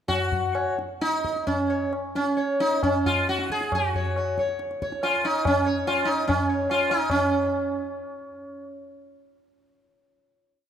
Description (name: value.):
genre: indian classical, Hindustani.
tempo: 129-165 BPM.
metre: 4/4.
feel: straight.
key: C# major.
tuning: A4 = 443 Hz.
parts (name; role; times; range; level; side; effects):
sitar; melody; 0.1-8.6 s; C#4 to C#5; -24 LUFS; equal; none.
tabla; percussion; 0.1-7.3 s; none; -29 LUFS; left 1 dB; none.
room: moderate concert hall reverb, RT60 2.0 s.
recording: close, detailed microphones.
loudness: -22 LUFS.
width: side -9 dB against mid.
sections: 0.1-7.1 theme; 7.1-10.2 final note.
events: speeding up 0.1-10.2.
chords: none.